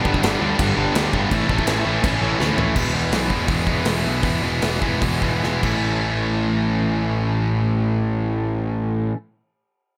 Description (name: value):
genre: punk rock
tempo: 141-167 BPM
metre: 4/4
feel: straight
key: A major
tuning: A4 = 441 Hz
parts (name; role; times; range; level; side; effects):
- cranked stack guitar; riff; 0.0-9.2 s; E2 to A3; -27 LUFS; equal; overdrive
- distorted electric guitar; riff; 0.0-9.2 s; G2 to E4; -26 LUFS; equal; distortion
- distorted electric guitar; riff; 0.0-2.7 s; G2 to E4; -29 LUFS; equal; none
- fuzz picked electric bass; bass; 0.1-9.1 s; E1 to D2; -28 LUFS; equal; overdrive
- big rock drum kit; drums; 0.1-5.7 s; crash cymbal, hi-hat, kick drum, snare drum, toms; -26 LUFS; equal; none
room: little or no reverb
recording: none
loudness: -21 LUFS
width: mono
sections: 0.0-2.8 A section; 2.8-5.8 B section; 5.8-9.2 C section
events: drum fill 2.4-2.8, 5.4-5.8; slowing down 2.8-5.8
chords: 0.0 G; 1.3 A; 2.8 E; 5.6 A